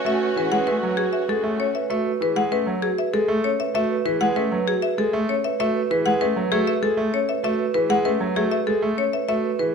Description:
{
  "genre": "classical, minimalist pattern music",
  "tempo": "195 BPM",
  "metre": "6/4",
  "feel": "straight",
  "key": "unclear",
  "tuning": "A4 = 440 Hz",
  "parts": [
    { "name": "marimba with hard mallets", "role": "melody", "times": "0.0-9.7 s", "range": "G#4 to F#5", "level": "-23 LUFS", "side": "left 8 dB", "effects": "none" },
    { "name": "clear clarinet", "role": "second line", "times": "0.0-1.7 s", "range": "F#4", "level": "-31 LUFS", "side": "right 4 dB", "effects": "none" },
    { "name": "rich studio string section", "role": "sustained chords", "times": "0.0-1.7 s", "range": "C#4 to F#4", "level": "-30 LUFS", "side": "left 1 dB", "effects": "none" },
    { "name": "vibraphone with soft mallets", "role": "arpeggios", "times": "0.0-9.7 s", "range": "C#4 to B4", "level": "-26 LUFS", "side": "right 9 dB", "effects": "none" },
    { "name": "bright grand piano", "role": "accompaniment", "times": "0.1-9.7 s", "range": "E3 to A3", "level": "-25 LUFS", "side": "right 2 dB", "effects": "none" }
  ],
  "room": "light reverb",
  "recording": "dark, warm production",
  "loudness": "-20 LUFS",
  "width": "side -6 dB against mid",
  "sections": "0.0-9.7 A section",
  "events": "none",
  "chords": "0.0 F#m11",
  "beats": "| 0.06 0.36 0.67 0.98 1.29 1.59 | 1.90 2.21 2.52 2.83 3.13 3.44 | 3.75 4.05 4.36 4.67 4.98 5.29 | 5.59 5.90 6.21 6.52 6.83 7.13 | 7.44 7.75 8.05 8.36 8.67 8.98 | 9.29 9.59"
}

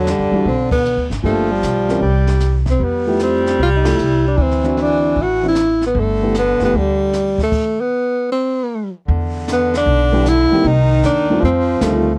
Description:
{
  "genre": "jazz, small-group swing and bop",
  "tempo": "153 BPM",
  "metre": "4/4",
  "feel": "swing 65% on 8ths",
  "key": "G major",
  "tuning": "A4 = 439 Hz",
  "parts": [
    { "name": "clear tenor saxophone", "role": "melody", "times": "0.0-12.2 s", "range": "F#3 to F#4", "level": "-19 LUFS", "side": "equal", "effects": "none" },
    { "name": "clear baritone saxophone", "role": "second line", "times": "0.0-12.2 s", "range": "D3 to G3", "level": "-25 LUFS", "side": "equal", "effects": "none" },
    { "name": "upright bass", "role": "bass", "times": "0.0-12.2 s", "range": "F#1 to F#2", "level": "-21 LUFS", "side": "equal", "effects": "none" },
    { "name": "jazz brush drum kit", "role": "drums", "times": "0.1-12.2 s", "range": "brushed snare drum, crash cymbal, hi-hat, kick drum, ride cymbal, snare drum", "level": "-29 LUFS", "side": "equal", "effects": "none" },
    { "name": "warm grand piano", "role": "accompaniment", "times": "0.3-6.7, 10.1-12.1 s", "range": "D#3 to Bb4", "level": "-23 LUFS", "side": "equal", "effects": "none" }
  ],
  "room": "little or no reverb",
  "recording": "worn, warbling old tape, cassette tape, warbly pitch drift",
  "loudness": "-16 LUFS",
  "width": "mono",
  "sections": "0.0-9.1 A section; 9.1-12.2 B section",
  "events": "band accent 0.7, 3.8; stop 7.5-9.1",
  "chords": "0.0 Em9; 1.2 Gm7; 2.0 C5; 2.8 Fmaj9; 4.4 D9; 5.9 Gadd9; 8.3 N.C.; 9.1 Em7; 10.6 Cm; 11.4 F9",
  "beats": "0.07 0.46 0.85 | 1.24 1.63 2.02 2.42 | 2.81 3.20 3.59 3.99 | 4.38 4.77 5.16 5.56 | 5.95 6.34 6.73 7.13 | 7.52 7.91 8.30 8.69 | 9.08 9.47 9.87 10.26 | 10.65 11.04 11.43 11.82"
}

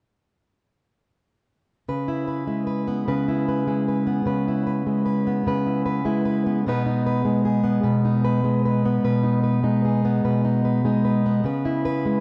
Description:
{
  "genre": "folk",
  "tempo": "50 BPM (dotted quarters)",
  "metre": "6/8",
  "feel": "straight",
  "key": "C# minor",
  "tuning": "A4 = 440 Hz",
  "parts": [
    { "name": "fingerpicked plugged-in steel-string acoustic guitar", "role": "accompaniment", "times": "1.9-12.2 s", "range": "B2 to B4", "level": "-22 LUFS", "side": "equal", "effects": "none" }
  ],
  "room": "moderate plate reverb, RT60 2.8 s",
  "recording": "worn, warbling old tape, cassette tape, warbly pitch drift, nothing above 10.3 kHz",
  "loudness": "-22 LUFS",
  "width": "mono",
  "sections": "1.9-11.5 A section",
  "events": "none",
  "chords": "1.9 C#m7; 6.6 G#m/B; 11.5 C#m7",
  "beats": "| 1.87 3.07 | 4.26 5.45 | 6.64 7.84 | 9.03 10.24 | 11.45"
}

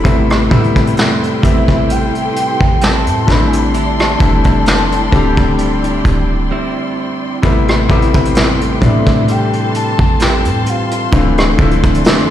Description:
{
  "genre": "contemporary R&B",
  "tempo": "65 BPM",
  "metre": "4/4",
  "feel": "swing 54% on 16ths",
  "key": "A minor",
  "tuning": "A4 = 439 Hz",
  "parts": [
    { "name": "bright grand piano", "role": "accompaniment", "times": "0.0-12.3 s", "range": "C3 to A4", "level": "-17 LUFS", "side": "left 6 dB", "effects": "none" },
    { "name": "warm studio string section", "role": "sustained chords", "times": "0.0-12.3 s", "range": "E3 to C6", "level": "-22 LUFS", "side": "left 1 dB", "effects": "none" },
    { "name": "direct-recorded clean electric guitar", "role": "arpeggios", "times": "0.0-12.3 s", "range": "A2 to E4", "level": "-20 LUFS", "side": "right 7 dB", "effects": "none" },
    { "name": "clean 808-style bass", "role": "bass", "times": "0.0-12.0 s", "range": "D1 to A2", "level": "-16 LUFS", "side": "equal", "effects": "none" },
    { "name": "vintage brush drum kit", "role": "drums", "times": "0.0-12.3 s", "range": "hi-hat, kick drum, rim click, snare drum", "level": "-14 LUFS", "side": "equal", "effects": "none" },
    { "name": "soft octave-layered synth lead", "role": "melody", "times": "1.5-11.6 s", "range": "E5 to B5", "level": "-20 LUFS", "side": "left 1 dB", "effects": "chorus, tremolo, tape echo" }
  ],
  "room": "studio ambience",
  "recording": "played on a big sound system in a bare room, stone room reverb",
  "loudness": "-10 LUFS",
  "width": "side -11 dB against mid",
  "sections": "0.0-7.4 A section; 7.4-12.3 A section",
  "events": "break 6.5-7.4",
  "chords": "0.1 Am7; 3.3 D9sus4; 7.4 Am7; 11.1 Dm9",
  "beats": "| 0.05 0.97 1.90 2.82 | 3.74 4.67 5.59 6.51 | 7.43 8.36 9.28 10.20 | 11.13 12.05"
}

